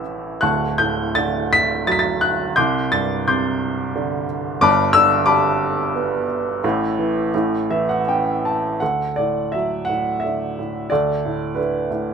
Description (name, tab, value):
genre	classical, lyrical solo piano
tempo	78-93 BPM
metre	3/4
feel	rubato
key	D major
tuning	A4 = 439 Hz
part	warm upright piano	solo	0.0-12.1 s	D1 to B6	-17 LUFS	equal	none
room	light reverb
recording	minimal, uncompressed stereo recording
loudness	-17 LUFS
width	side -6 dB against mid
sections	0.0-8.8 A section; 8.8-12.1 B section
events	upright piano fill 7.3-8.8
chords	0.4 Dmaj7; 2.6 Csus2; 4.6 Gadd9; 6.6 Asus4; 7.3 A; 8.8 Dadd9; 10.9 Bm7/D